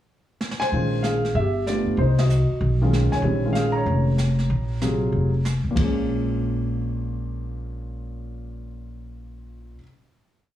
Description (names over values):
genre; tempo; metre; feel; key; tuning
jazz piano trio; 191 BPM; 4/4; swing 64% on 8ths; Bb minor; A4 = 441 Hz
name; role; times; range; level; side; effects
jazz brush drum kit; drums; 0.4-6.0 s; brushed snare drum, hi-hat, kick drum, ride cymbal, snare drum; -31 LUFS; right 2 dB; none
warm grand piano; melody; 0.6-9.8 s; Bb2 to Bb5; -25 LUFS; left 1 dB; none
upright bass; bass; 0.7-9.7 s; F1 to C2; -23 LUFS; equal; none
room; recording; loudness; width
light reverb; small room ambience; -20 LUFS; side -12 dB against mid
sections
0.0-0.7 pickup bar; 0.7-5.8 A section; 5.8-8.3 final chord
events
drum fill 0.4-0.7; band accent 2.1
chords
0.0 N.C.; 0.7 Bbm7; 1.4 G7; 2.0 Cdim; 2.6 B69; 3.2 Bbm7